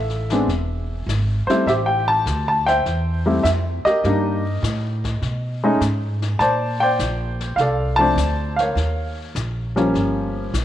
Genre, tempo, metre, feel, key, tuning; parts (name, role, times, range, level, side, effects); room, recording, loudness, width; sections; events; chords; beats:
jazz piano trio; 102 BPM; 4/4; swing 69% on 8ths; A4 = 439 Hz
warm baby grand piano; melody; 0.0-10.5 s; F3 to A5; -19 LUFS; equal
upright bass; bass; 0.0-10.6 s; E1 to B2; -23 LUFS; equal
jazz brush drum kit; drums; 0.1-10.6 s; brushed snare drum, hi-hat, kick drum, snare drum; -33 LUFS; left 6 dB
light reverb, small room ambience; 1960s-style stereo; -18 LUFS; side -12 dB against mid
0.0-10.6 A section
0.5 E; 1.7 Am7; 4.0 Ebmaj7#11/G; 5.2 B6; 6.4 Bbmaj9; 8.8 Eb9
0.49 1.08 | 1.67 2.26 2.85 3.44 | 4.04 4.63 5.22 5.81 | 6.40 6.99 7.58 8.18 | 8.77 9.36 9.95 10.54